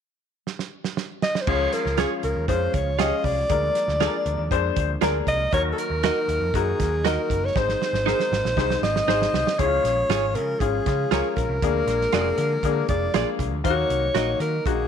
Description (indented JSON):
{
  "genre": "uptempo 1960s-style soul",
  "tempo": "118 BPM",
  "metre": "4/4",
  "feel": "straight",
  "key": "Db major",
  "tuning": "A4 = 438 Hz",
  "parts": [
    { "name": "warm soul drum kit", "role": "drums", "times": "0.5-14.8 s", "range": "crash cymbal, hi-hat, kick drum, snare drum", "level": "-28 LUFS", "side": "right 4 dB", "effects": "none" },
    { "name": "breathy alto saxophone", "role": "melody", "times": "1.2-14.9 s", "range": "Ab4 to Eb5", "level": "-24 LUFS", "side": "equal", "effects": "none" },
    { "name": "clear upright piano", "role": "accompaniment", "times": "1.5-14.8 s", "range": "Bb3 to C5", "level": "-27 LUFS", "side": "left 14 dB", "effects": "tube saturation" },
    { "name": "percussive tonewheel organ", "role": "sustained chords", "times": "1.5-14.9 s", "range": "Eb3 to F4", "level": "-34 LUFS", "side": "equal", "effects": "overdrive, chorus vibrato, fast rotary speaker" },
    { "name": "picked electric bass", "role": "bass", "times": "1.5-14.8 s", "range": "F1 to Eb3", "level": "-28 LUFS", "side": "equal", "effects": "none" },
    { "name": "direct-recorded clean electric guitar", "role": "stabs", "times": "2.0-14.3 s", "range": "Eb4 to Eb5", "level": "-28 LUFS", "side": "right 13 dB", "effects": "none" }
  ],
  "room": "light reverb, small room ambience",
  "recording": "1960s-style stereo with parts hard left and right",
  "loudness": "-20 LUFS",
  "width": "side -8 dB against mid",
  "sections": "0.0-1.5 A section; 1.5-9.6 B section; 9.6-14.9 C section",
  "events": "drum fill 0.5-1.5, 7.6-9.6",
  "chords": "0.0 N.C.; 1.5 Db; 3.5 Bb7/D; 5.5 Ebm; 7.6 Ab; 9.6 Db; 11.6 Bb7; 13.6 Ebm",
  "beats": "0.46 0.97 | 1.47 1.98 2.49 2.99 | 3.50 4.01 4.51 5.02 | 5.53 6.04 6.54 7.05 | 7.56 8.07 8.58 9.08 | 9.59 10.10 10.61 11.11 | 11.62 12.13 12.63 13.14 | 13.65 14.15 14.66"
}